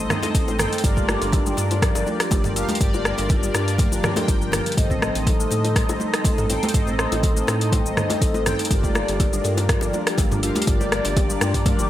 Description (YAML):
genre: afro house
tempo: 122 BPM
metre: 4/4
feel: swing 53% on 16ths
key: G minor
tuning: A4 = 440 Hz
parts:
  - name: mellow synth brass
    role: stabs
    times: 0.0-11.9 s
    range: C4 to G5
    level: -26 LUFS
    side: left 1 dB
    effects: chorus, phaser, sidechain pumping, analog delay
  - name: round analog bass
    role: bass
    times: 0.0-11.9 s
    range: G1 to A2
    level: -27 LUFS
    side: equal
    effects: sidechain pumping
  - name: kalimba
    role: arpeggios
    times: 0.1-11.8 s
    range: D3 to A4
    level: -28 LUFS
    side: left 1 dB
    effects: sidechain pumping, analog delay
  - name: afro-pop drum kit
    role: drums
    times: 0.1-11.9 s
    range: hi-hat, rim click, shaker, toms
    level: -25 LUFS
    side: equal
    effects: none
  - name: congas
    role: percussion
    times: 0.1-11.8 s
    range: none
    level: -30 LUFS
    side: right 3 dB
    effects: none
  - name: bongos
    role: percussion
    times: 0.2-11.9 s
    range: none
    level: -33 LUFS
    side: left 4 dB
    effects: none
  - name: electronic kick drum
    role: drums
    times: 0.3-11.8 s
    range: none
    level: -21 LUFS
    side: equal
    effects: overdrive
room: light reverb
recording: none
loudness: -18 LUFS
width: side -13 dB against mid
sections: 0.0-11.9 A section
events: none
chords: 0.0 Adim; 0.8 Gm7; 4.8 Adim; 8.7 Gm7